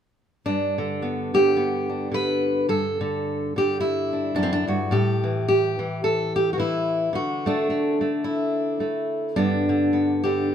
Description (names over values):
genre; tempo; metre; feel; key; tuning
folk, solo fingerstyle acoustic guitar; 108 BPM; 4/4; swing 58% on 8ths; G major; A4 = 440 Hz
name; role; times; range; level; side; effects
fingerpicked steel-string acoustic guitar; solo; 0.5-10.5 s; F#2 to B4; -21 LUFS; equal; none
room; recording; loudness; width
light reverb; minimal, uncompressed stereo recording; -21 LUFS; side -8 dB against mid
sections
0.5-10.5 A section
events
none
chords
0.5 G; 4.9 A5; 7.1 D; 9.4 G